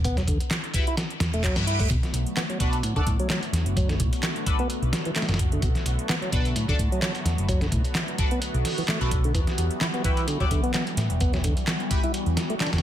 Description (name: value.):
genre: breakbeat, breaks.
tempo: 129 BPM.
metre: 4/4.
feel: swing 54% on 16ths.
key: B minor.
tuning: A4 = 440 Hz.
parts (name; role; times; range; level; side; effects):
tonewheel organ; riff; 0.0-12.7 s; A2 to E4; -31 LUFS; equal; slow rotary speaker, vintage 12-bit sampler grit, ping-pong delay.
hollow-body short-scale picked electric bass; bass; 0.0-12.8 s; E1 to A2; -26 LUFS; equal; none.
dusty soul sampler-style drum kit; drums; 0.0-12.8 s; hi-hat, kick drum, snare drum; -26 LUFS; equal; none.
house drum kit; drums; 0.0-12.8 s; handclaps, hi-hat; -33 LUFS; right 1 dB; none.
band-passed chord stab; stabs; 0.7-12.0 s; D4 to D5; -33 LUFS; left 2 dB; phaser, analog chorus, cassette tape, ping-pong delay.
reverse cymbal; sound effects; 1.2-1.9 s; none; -34 LUFS; right 6 dB; none.
phased analog pad; sustained chords; 1.9-12.8 s; D3 to F#4; -32 LUFS; equal; phaser, chorus, sidechain pumping.
room: light reverb.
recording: dense, heavily limited modern master.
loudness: -22 LUFS.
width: side -11 dB against mid.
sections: 0.0-12.8 A section.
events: reverse cymbal 1.2-1.9.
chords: 0.0 Emadd9; 1.9 Bm7; 9.3 Emadd9.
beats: | 0.04 0.51 0.97 1.44 | 1.91 2.37 2.84 3.30 | 3.77 4.23 4.70 5.16 | 5.63 6.09 6.56 7.02 | 7.49 7.95 8.42 8.88 | 9.35 9.81 10.28 10.74 | 11.21 11.67 12.14 12.60.